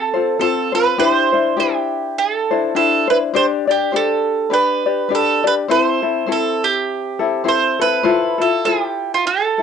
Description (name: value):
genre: Hawaiian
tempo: 102 BPM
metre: 4/4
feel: swing 57% on 8ths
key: C major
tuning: A4 = 443 Hz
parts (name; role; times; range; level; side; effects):
- bowl-back mandolin; melody; 0.0-9.6 s; F4 to C5; -17 LUFS; right 6 dB; cassette tape
- tenor ukulele; accompaniment; 0.0-9.6 s; C4 to D5; -18 LUFS; left 8 dB; cassette tape
room: wet small room ambience, RT60 0.5 s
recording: home recording on cassette, nothing above 10.7 kHz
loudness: -15 LUFS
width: side -7 dB against mid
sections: 0.0-9.6 A section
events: none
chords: 0.0 F; 1.0 Cadd9; 3.3 Gsus4; 4.5 G; 5.7 Am; 8.1 Fmaj7